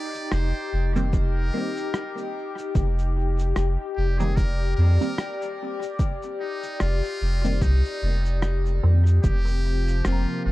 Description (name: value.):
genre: ambient dub.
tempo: 74 BPM.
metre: 4/4.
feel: swing 58% on 16ths.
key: unclear.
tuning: A4 = 441 Hz.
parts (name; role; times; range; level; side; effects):
trumpet with metal mute; melody; 0.0-10.5 s; Eb4 to D5; -35 LUFS; equal; dub echo.
warm analog pad; sustained chords; 0.0-10.5 s; C3 to D5; -31 LUFS; left 3 dB; chorus, tremolo.
electronic cabasa and rim click; drums; 0.1-10.2 s; none; -34 LUFS; equal; dub echo.
soft dub sub bass; bass; 0.3-10.5 s; F1 to F2; -21 LUFS; equal; none.
filtered dub chord stab; stabs; 1.0-9.0 s; Eb3 to C4; -32 LUFS; right 1 dB; phaser, dub echo.
electronic kick drum; drums; 1.1-9.4 s; none; -23 LUFS; equal; none.
soft synth bell; arpeggios; 10.1-10.5 s; C4 to Bb5; -31 LUFS; left 6 dB; chorus.
room: little or no reverb.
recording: dark, warm production.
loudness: -21 LUFS.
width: side -18 dB against mid.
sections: 0.0-9.2 A section; 9.2-10.5 B section.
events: none.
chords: 0.0 Cm7/F; 9.2 F5.